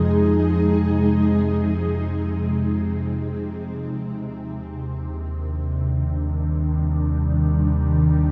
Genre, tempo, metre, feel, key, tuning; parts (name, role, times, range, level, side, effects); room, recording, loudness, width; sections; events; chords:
ambient; free time; C minor; A4 = 440 Hz
ethereal airy pad; sustained chords; 0.0-8.3 s; C3 to Ab4; -24 LUFS; equal; ensemble chorus, built-in reverb, phaser
warm sub bass; bass; 0.0-8.3 s; Eb2 to F2; -26 LUFS; equal
wet lush hall reverb, RT60 2.8 s; dark, warm production; -22 LUFS; mono
0.0-8.3 A section
0.0 Fm7; 3.9 Cmadd9/Eb